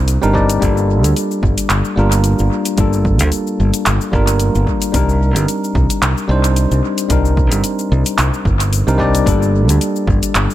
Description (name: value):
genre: sunset chillout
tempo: 111 BPM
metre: 4/4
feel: swing 55% on 16ths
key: G minor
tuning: A4 = 440 Hz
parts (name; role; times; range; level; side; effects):
- bell-like tine electric piano; accompaniment; 0.0-10.5 s; G3 to D5; -17 LUFS; moving between left 5 dB and right 3 dB; auto-pan, analog delay
- modern bright fingered electric bass; bass; 0.0-10.5 s; G1 to D2; -15 LUFS; equal; none
- deep house drum kit; drums; 0.1-10.5 s; cabasa, handclaps, hi-hat; -21 LUFS; equal; overdrive, analog delay
- electronic kick drum; drums; 0.3-10.2 s; none; -19 LUFS; equal; overdrive
room: light reverb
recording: echo-heavy mix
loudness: -12 LUFS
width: side -14 dB against mid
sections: 0.0-10.5 A section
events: none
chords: 0.0 Cm7; 0.6 Gm7; 4.9 Cm7; 9.3 Gm7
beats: 0.08 | 0.62 1.16 1.70 2.24 | 2.78 3.32 3.86 4.40 | 4.94 5.48 6.03 6.57 | 7.11 7.65 8.19 8.73 | 9.27 9.81 10.35